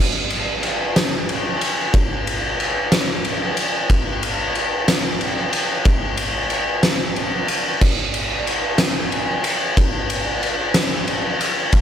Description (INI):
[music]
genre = rock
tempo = 61 BPM (dotted quarters)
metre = 6/8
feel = straight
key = none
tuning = none
[part]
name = oversized low-tuned drum kit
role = drums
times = 0.3-11.8 s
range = crash cymbal, kick drum, ride cymbal, snare drum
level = -17 LUFS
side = equal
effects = none
[sound]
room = light reverb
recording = none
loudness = -17 LUFS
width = side -9 dB against mid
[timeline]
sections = 0.0-11.8 A section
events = none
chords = none